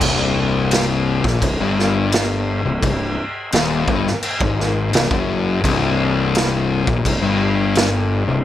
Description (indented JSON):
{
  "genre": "stoner and doom metal",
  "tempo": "85 BPM",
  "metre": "4/4",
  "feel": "straight",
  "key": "C minor",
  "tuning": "A4 = 441 Hz",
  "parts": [
    { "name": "thick fuzz guitar", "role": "riff", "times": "0.0-8.4 s", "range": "C2 to Bb2", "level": "-19 LUFS", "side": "left 5 dB", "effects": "distortion" },
    { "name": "fuzz fingered electric bass", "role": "bass", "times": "0.0-8.4 s", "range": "C1 to Bb1", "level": "-22 LUFS", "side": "right 1 dB", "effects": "overdrive" },
    { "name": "raw garage drum kit", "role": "drums", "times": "0.0-7.9 s", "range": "crash cymbal, kick drum, snare drum", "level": "-20 LUFS", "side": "right 1 dB", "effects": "none" }
  ],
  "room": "light reverb",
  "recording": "none",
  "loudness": "-16 LUFS",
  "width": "side -12 dB against mid",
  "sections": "0.0-8.4 A section",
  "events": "none",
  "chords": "0.0 C5"
}